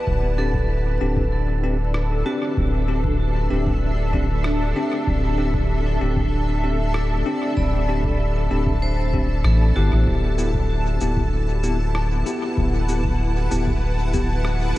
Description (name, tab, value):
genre	ambient dub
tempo	96 BPM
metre	4/4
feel	straight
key	D mixolydian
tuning	A4 = 441 Hz
part	granular cloud pad	sustained chords	0.0-14.8 s	D4 to A5	-27 LUFS	equal	built-in reverb, ensemble chorus
part	vibraphone with hard mallets	arpeggios	0.0-14.8 s	F#4 to B5	-32 LUFS	equal	analog delay
part	soft dub sub bass	bass	0.1-14.7 s	D1 to A1	-21 LUFS	equal	tube saturation
part	electronic kick drum	drums	0.1-14.3 s	none	-26 LUFS	equal	none
part	bell-like tine electric piano	stabs	0.4-14.8 s	B3 to G4	-27 LUFS	left 2 dB	fast stereo tremolo, dub echo
part	electronic rim click and cabasa	drums	1.9-14.8 s	none	-37 LUFS	equal	dub echo
room	light reverb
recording	vinyl crackle, nothing above 10.7 kHz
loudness	-19 LUFS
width	side -16 dB against mid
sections	0.0-14.8 A section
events	none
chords	0.1 D7sus4